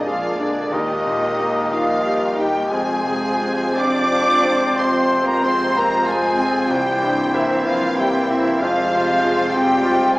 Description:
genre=classical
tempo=54-66 BPM (dotted quarters)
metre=12/8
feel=rubato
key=unclear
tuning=A4 = 442 Hz
part: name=clear concert grand piano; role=melody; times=0.0-10.2 s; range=Bb1 to Ab4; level=-24 LUFS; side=left 1 dB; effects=none
part: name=rich studio violin section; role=melody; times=0.0-10.2 s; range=D5 to D6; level=-26 LUFS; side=equal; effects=none
part: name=mellow large flute ensemble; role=second line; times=0.0-10.2 s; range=D5 to D6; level=-23 LUFS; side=equal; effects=none
part: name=warm clarinet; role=second line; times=0.0-10.2 s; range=E4 to Ab4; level=-29 LUFS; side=equal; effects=none
part: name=warm oboe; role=second line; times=0.0-10.2 s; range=C5 to Eb5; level=-26 LUFS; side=equal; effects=none
part: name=warm symphonic violin section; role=second line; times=0.0-10.2 s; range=C4 to Ab4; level=-28 LUFS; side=left 1 dB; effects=none
part: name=mellow bassoon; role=accompaniment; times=0.0-10.2 s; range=Ab3 to C4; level=-27 LUFS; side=equal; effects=none
part: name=rich studio viola section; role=accompaniment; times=0.0-10.2 s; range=D4 to D5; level=-27 LUFS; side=equal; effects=none
part: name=dark French horn section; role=sustained chords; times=0.0-10.2 s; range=Ab3 to Eb4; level=-30 LUFS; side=equal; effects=none
part: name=mellow trombone section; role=sustained chords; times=0.0-10.2 s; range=Bb2 to Ab3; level=-30 LUFS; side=right 1 dB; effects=none
part: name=rich studio cello section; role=bass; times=0.0-10.2 s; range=D3 to D4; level=-30 LUFS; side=right 1 dB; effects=none
part: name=rich studio double bass section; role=bass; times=0.0-10.2 s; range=F1 to F2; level=-34 LUFS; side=right 1 dB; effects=none
room=wet concert hall reverb, RT60 2.2 s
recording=small speaker sound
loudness=-16 LUFS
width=side -20 dB against mid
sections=0.0-10.2 A section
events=none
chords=0.0 Bb7; 0.7 Eb; 2.7 Fm; 6.7 C7; 8.6 Fm

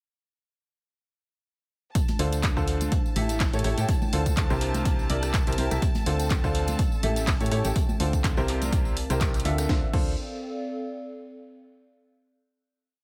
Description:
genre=piano house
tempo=124 BPM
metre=4/4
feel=swing 55% on 16ths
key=D minor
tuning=A4 = 438 Hz
part: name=warbly tape-like pad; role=texture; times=2.2-11.6 s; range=C4 to A5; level=-39 LUFS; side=equal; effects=chorus, built-in reverb, sidechain pumping
part: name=clear studio string section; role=sustained chords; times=2.0-9.7 s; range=A5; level=-42 LUFS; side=equal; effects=sidechain pumping
part: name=dusty soul sampler-style drum kit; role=drums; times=2.0-9.7 s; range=hi-hat, snare drum, tambourine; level=-44 LUFS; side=equal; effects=none
part: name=electronic kick drum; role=drums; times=2.0-10.0 s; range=none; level=-28 LUFS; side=equal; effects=none
part: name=garage drum kit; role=drums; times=2.0-10.0 s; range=crash cymbal, handclaps, hi-hat, rim click, snare drum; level=-36 LUFS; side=equal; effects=none
part: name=tambourine and congas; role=percussion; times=2.0-9.7 s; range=none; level=-39 LUFS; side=equal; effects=none
part: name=clear upright piano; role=riff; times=2.2-10.1 s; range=C3 to G5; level=-33 LUFS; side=equal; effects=sidechain pumping
part: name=solid FM bass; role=bass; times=2.2-10.2 s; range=A1 to A2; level=-30 LUFS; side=equal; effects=sidechain pumping
room=little or no reverb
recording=none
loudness=-26 LUFS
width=mono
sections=2.0-9.7 drop; 9.7-11.6 final chord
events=drop 2.0-9.7; band accent 9.2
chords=2.0 Dm7; 2.9 A7; 3.9 Dm7; 4.6 C7; 5.8 Dm7; 6.8 A7; 7.8 C7; 9.7 Dm7

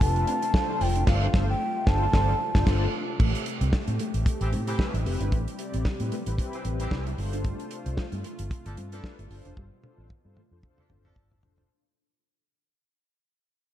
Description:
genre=early-eighties boogie funk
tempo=113 BPM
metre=4/4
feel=swing 56% on 16ths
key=unclear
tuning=A4 = 439 Hz
part: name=breathy hollow bansuri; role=melody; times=0.0-2.9 s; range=F5 to A5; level=-29 LUFS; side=right 1 dB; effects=ping-pong delay
part: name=mellow synth brass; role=accompaniment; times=0.0-11.7 s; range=C4 to D5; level=-35 LUFS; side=left 4 dB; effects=chorus
part: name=warm analog pad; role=sustained chords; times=0.0-11.7 s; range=B2 to G4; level=-37 LUFS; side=left 1 dB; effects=chorus
part: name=mellow electric guitar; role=riff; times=0.0-11.7 s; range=G3 to E4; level=-40 LUFS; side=right 2 dB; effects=ensemble chorus
part: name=vintage muted fingered electric bass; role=bass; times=0.0-11.6 s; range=F1 to A2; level=-27 LUFS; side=equal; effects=none
part: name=damped 70s drum kit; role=drums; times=0.0-11.7 s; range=crash cymbal, hi-hat, kick drum, snare drum, toms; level=-27 LUFS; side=equal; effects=none
part: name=warm horn section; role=second line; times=4.4-11.4 s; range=E3 to A4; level=-40 LUFS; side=equal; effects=none
room=light reverb, small room ambience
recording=none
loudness=-24 LUFS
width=side -12 dB against mid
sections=0.0-3.2 A section; 3.2-11.7 B section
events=band accent 1.1-3.2; fade-out 3.2-11.7; drum fill 9.6-11.7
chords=0.0 G9sus4

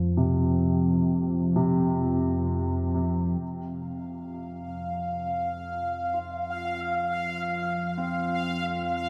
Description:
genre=dark ambient drone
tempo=free time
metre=none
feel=none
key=unclear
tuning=A4 = 439 Hz
part: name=analog drone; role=drone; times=0.0-9.1 s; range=F2 to F3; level=-31 LUFS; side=equal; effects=chorus
part: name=warm concert grand piano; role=arpeggios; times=0.2-9.1 s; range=C3 to F4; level=-32 LUFS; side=equal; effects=tape echo
part: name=bubbling stepped-filter texture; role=texture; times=4.6-9.1 s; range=F5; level=-32 LUFS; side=equal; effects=chorus, built-in reverb
room=wet huge ambient reverb, RT60 8.1 s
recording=none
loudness=-27 LUFS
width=mono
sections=0.0-3.4 A section; 3.4-9.1 B section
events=fade-in on synth drone 3.4-9.1; fade-in on grand piano 3.4-9.1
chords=0.0 F5

